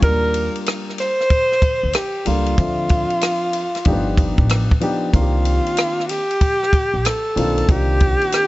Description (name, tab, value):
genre	hip hop, jazz-hop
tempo	94 BPM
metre	4/4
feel	swing 66% on 16ths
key	C dorian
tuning	A4 = 440 Hz
part	breathy alto saxophone	melody	0.0-8.5 s	F4 to C5	-20 LUFS	equal	none
part	dark baby grand piano	accompaniment	0.0-8.5 s	Eb3 to E5	-23 LUFS	left 1 dB	none
part	upright bass	bass	0.0-8.1 s	G1 to Eb2	-20 LUFS	equal	none
part	compact cocktail drum kit	drums	0.0-8.5 s	hi-hat, kick drum, ride cymbal, rim click	-20 LUFS	equal	none
room	studio reverb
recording	nothing above 7.9 kHz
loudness	-16 LUFS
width	side -18 dB against mid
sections	0.0-8.5 A section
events	none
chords	0.0 Ebmaj9; 2.6 Dm7; 3.9 G7b13; 5.1 Cm9